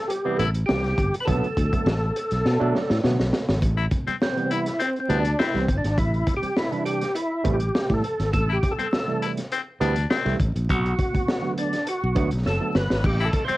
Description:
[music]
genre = funk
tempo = 102 BPM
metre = 4/4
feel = straight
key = A dorian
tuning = A4 = 440 Hz
[part]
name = percussive tonewheel organ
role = melody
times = 0.0-13.6 s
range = C4 to C5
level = -26 LUFS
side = equal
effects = chorus vibrato, slow rotary speaker, cassette tape
[part]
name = barky tine electric piano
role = stabs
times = 0.1-13.5 s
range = C3 to D5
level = -29 LUFS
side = right 4 dB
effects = overdrive, tube saturation, cassette tape
[part]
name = crunchy breakbeat drum kit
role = drums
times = 0.1-13.6 s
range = crash cymbal, hi-hat, kick drum, snare drum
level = -26 LUFS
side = equal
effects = cassette tape
[part]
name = growling baritone saxophone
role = second line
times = 0.3-13.6 s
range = C4 to E4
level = -27 LUFS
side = left 6 dB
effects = cassette tape
[part]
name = modern bright fingered electric bass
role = bass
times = 0.4-13.5 s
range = F#1 to B2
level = -24 LUFS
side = equal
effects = none
[sound]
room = light reverb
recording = home recording on cassette, vinyl crackle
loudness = -21 LUFS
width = side -17 dB against mid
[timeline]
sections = 0.0-3.6 A section; 3.6-13.6 B section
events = drum fill 2.4-3.6, 12.5-13.0; tine electric piano fill 2.4-3.6; tonewheel organ solo 3.6-13.6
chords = 0.0 Am7; 1.3 Bm7; 3.6 Am7; 10.7 Bm7; 13.0 Am7

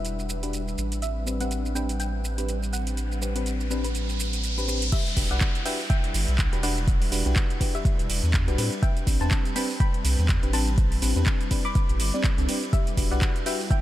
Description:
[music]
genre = deep house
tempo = 123 BPM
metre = 4/4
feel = swing 57% on 16ths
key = E minor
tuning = A4 = 441 Hz
[part]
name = soft round pluck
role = melody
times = 0.0-13.8 s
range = G4 to D6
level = -36 LUFS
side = left 1 dB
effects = wide subtle chorus, ping-pong delay
[part]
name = warm analog pad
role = sustained chords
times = 0.0-13.8 s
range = G3 to B4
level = -36 LUFS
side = equal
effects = chorus, sidechain pumping
[part]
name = round analog bass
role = bass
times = 0.0-13.2 s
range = E1 to A2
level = -26 LUFS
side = equal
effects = sidechain pumping
[part]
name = house drum kit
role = drums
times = 0.0-13.8 s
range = crash cymbal, handclaps, hi-hat, ride cymbal, shaker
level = -32 LUFS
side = right 2 dB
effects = none
[part]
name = mellow FM electric piano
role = stabs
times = 0.4-13.6 s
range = C4 to D5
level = -32 LUFS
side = left 1 dB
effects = chorus, phaser, cassette tape, sidechain pumping, ping-pong delay
[part]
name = riser and downlifter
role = sound effects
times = 3.1-8.8 s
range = none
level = -34 LUFS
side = right 1 dB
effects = none
[part]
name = electronic kick drum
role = drums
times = 4.9-13.8 s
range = none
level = -23 LUFS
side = equal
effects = overdrive
[sound]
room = light reverb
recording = none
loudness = -22 LUFS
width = side -14 dB against mid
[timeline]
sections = 0.0-4.9 A section; 4.9-13.8 B section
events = riser 3.1-4.9; drop 4.9-13.8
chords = 0.0 Em7; 0.8 Am11; 4.9 Em7; 8.6 Am11; 12.7 Em7

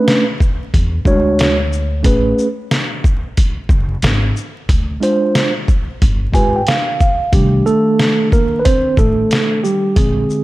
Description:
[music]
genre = hip hop, jazz-hop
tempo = 91 BPM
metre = 4/4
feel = swing 64% on 16ths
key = unclear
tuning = A4 = 440 Hz
[part]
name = mellow tine electric piano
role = accompaniment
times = 0.0-10.4 s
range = D3 to Ab5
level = -14 LUFS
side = right 1 dB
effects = medium stereo tremolo
[part]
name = trip hop sampler-style drum kit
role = drums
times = 0.1-10.4 s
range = hi-hat, kick drum, shaker, snare drum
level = -15 LUFS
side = equal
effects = none
[part]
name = upright bass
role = bass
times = 0.7-10.2 s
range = F#1 to E2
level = -18 LUFS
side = equal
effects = none
[sound]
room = light reverb, digital ambience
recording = vinyl crackle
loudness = -12 LUFS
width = side -18 dB against mid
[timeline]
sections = 0.0-7.3 A section; 7.3-10.4 A section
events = tine electric piano fill 6.0-7.3; tine electric piano solo 7.3-10.4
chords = 0.0 Bm9; 0.7 E13; 2.1 Amaj9; 4.7 Dm7b5; 6.0 G7b9; 7.3 Cm69

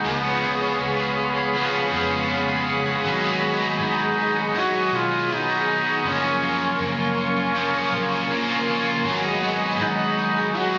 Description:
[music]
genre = dream pop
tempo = 80 BPM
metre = 4/4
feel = straight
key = G# dorian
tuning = A4 = 443 Hz
[part]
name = brilliant trombone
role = melody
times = 0.0-10.8 s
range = B3 to F#4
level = -27 LUFS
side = equal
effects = delay
[part]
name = cranked stack guitar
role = accompaniment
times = 0.0-10.8 s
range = F#2 to E#4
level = -28 LUFS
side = equal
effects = overdrive, harmonic tremolo, analog chorus
[part]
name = lush unison pad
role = sustained chords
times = 0.0-10.8 s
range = G#4 to C#6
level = -29 LUFS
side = equal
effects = chorus
[part]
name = electric guitar at the edge of break-up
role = arpeggios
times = 0.0-10.8 s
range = E#3 to G#4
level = -28 LUFS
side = equal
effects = lush chorus, delay
[part]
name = vintage muted fingered electric bass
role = bass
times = 0.0-10.8 s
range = F#1 to E#2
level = -39 LUFS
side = equal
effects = none
[sound]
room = moderate lush hall reverb, RT60 2.0 s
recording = recorded on a phone in the room, studio reverb, compression, nothing above 8.0 kHz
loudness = -22 LUFS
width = mono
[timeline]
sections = 0.0-10.8 A section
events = none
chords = 0.0 C#7; 3.0 G#m7; 6.0 F#maj7; 9.0 G#m7

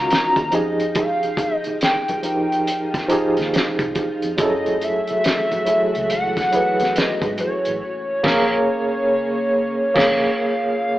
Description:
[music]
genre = R&B, neo-soul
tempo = 70 BPM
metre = 4/4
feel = swing 64% on 16ths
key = unclear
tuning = A4 = 439 Hz
[part]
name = hollow square lead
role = melody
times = 0.0-11.0 s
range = Db5 to Bb5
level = -21 LUFS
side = equal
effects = chorus
[part]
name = mellow tine electric piano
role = accompaniment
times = 0.0-11.0 s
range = Eb3 to Db5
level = -21 LUFS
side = right 1 dB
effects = medium tremolo
[part]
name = soft string machine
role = sustained chords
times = 0.0-11.0 s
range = Db3 to G5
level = -31 LUFS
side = left 1 dB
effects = ensemble chorus
[part]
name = vintage muted fingered electric bass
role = bass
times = 0.0-10.3 s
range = A1 to Ab2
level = -35 LUFS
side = equal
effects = none
[part]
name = cloth-damped thuddy drum kit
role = drums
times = 0.1-10.3 s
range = crash cymbal, hi-hat, kick drum, snare drum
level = -23 LUFS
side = equal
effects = none
[part]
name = congas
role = percussion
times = 0.4-7.6 s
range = none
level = -37 LUFS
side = equal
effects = none
[sound]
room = moderate stone room reverb, RT60 1.1 s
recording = band playing live in one room, AM radio sound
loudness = -17 LUFS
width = side -15 dB against mid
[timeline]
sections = 0.0-11.0 A section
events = band accent 7.8-11.0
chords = 0.0 Ebm9; 0.5 Fm9; 4.4 Gbm9; 7.8 Bbm7

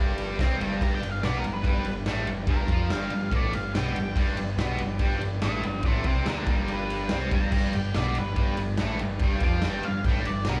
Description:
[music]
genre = garage rock duo or trio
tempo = 143 BPM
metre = 4/4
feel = straight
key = G mixolydian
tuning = A4 = 440 Hz
[part]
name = combo organ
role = sustained chords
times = 0.0-10.6 s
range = B3 to D5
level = -43 LUFS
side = equal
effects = none
[part]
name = cranked stack guitar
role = riff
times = 0.0-10.6 s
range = G2 to F4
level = -32 LUFS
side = equal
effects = overdrive, slapback echo
[part]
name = growling picked electric bass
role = bass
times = 0.0-10.6 s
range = G1 to F2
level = -34 LUFS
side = equal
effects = overdrive
[part]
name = raw garage drum kit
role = drums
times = 0.2-10.6 s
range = crash cymbal, kick drum, ride cymbal, snare drum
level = -30 LUFS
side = equal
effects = none
[part]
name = octave-fuzz lead guitar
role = melody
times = 0.8-10.6 s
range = F4 to D6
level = -36 LUFS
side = equal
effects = distortion, slapback echo
[sound]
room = little or no reverb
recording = live gig heard through the venue's PA, club reverb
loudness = -27 LUFS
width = mono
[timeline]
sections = 0.8-10.6 A section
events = lead electric guitar solo 0.8-10.6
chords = 0.0 G

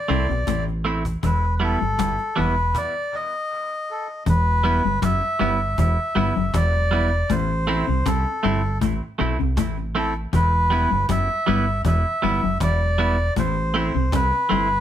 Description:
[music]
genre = roots reggae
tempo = 79 BPM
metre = 4/4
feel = straight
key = E minor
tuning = A4 = 437 Hz
[part]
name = melodica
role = melody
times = 0.0-14.8 s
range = A4 to E5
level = -24 LUFS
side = left 1 dB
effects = none
[part]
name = semi-hollow electric guitar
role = accompaniment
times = 0.1-14.7 s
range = G3 to E4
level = -26 LUFS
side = right 4 dB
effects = dub echo
[part]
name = clean electric guitar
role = riff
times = 0.1-14.7 s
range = E2 to C3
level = -26 LUFS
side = left 5 dB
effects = dub echo
[part]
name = deep dub fingered electric bass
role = bass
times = 0.1-14.8 s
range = E1 to C2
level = -22 LUFS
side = right 1 dB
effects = none
[part]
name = cajon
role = drums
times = 0.1-14.8 s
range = none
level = -30 LUFS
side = equal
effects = dub echo
[sound]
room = moderate studio reverb, RT60 0.7 s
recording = band playing live in one room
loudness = -19 LUFS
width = side -11 dB against mid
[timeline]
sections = 0.0-4.3 A section; 4.3-14.8 B section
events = melodica solo 0.0-4.3; stop 2.7-4.3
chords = 0.0 Am; 1.2 Em; 2.7 N.C.; 4.3 Em; 7.3 Am; 10.3 Em; 13.4 Am

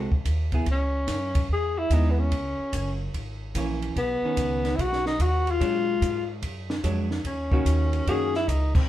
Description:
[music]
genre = jazz, small-group swing and bop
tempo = 146 BPM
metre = 4/4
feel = swing 66% on 8ths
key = unclear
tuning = A4 = 440 Hz
[part]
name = archtop guitar, miked and amplified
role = accompaniment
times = 0.0-8.3 s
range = D#3 to A4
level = -30 LUFS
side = right 2 dB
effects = none
[part]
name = upright bass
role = bass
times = 0.0-8.9 s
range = F#1 to A#2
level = -27 LUFS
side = equal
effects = none
[part]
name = compact cocktail drum kit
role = drums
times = 0.1-8.8 s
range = crash cymbal, hi-hat, kick drum, ride cymbal, snare drum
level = -28 LUFS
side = equal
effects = none
[part]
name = breathy tenor saxophone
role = melody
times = 0.7-8.9 s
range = B3 to G#4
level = -27 LUFS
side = left 2 dB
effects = none
[sound]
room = moderate studio reverb, RT60 0.8 s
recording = heard from further back in the room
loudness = -23 LUFS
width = side -13 dB against mid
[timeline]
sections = 0.7-8.9 A section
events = band accent 8.7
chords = 0.0 G#7b9; 0.7 C#m7; 2.3 F#7; 4.0 Badd9; 5.6 A#7b13; 7.3 D#m7

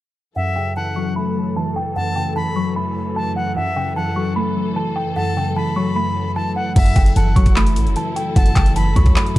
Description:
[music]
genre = hip hop, trap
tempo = 150 BPM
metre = 4/4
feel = half-time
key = F# phrygian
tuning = A4 = 440 Hz
[part]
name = worn celesta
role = melody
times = 0.4-9.4 s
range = F#5 to C#6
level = -25 LUFS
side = equal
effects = low-pass filter
[part]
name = bright reedy silver concert flute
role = second line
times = 0.4-9.1 s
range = E5 to B5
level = -28 LUFS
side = left 3 dB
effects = none
[part]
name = warbly lo-fi synth keys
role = accompaniment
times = 0.4-9.4 s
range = F#2 to A3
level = -22 LUFS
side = equal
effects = chorus, low-pass filter
[part]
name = dark symphonic string section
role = sustained chords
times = 0.4-9.4 s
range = F#2 to A4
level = -28 LUFS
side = left 2 dB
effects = low-pass filter
[part]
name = warm 808-style bass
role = bass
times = 6.8-9.4 s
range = F#1 to C#2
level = -16 LUFS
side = equal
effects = none
[part]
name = trap drum kit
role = drums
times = 6.8-9.4 s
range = crash cymbal, handclaps, hi-hat, kick drum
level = -15 LUFS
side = equal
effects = none
[sound]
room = studio ambience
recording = dark, warm production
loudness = -16 LUFS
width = side -16 dB against mid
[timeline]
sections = 0.4-6.8 A section; 6.8-9.4 B section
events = filter sweep 0.4-6.8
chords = 0.4 F#m7

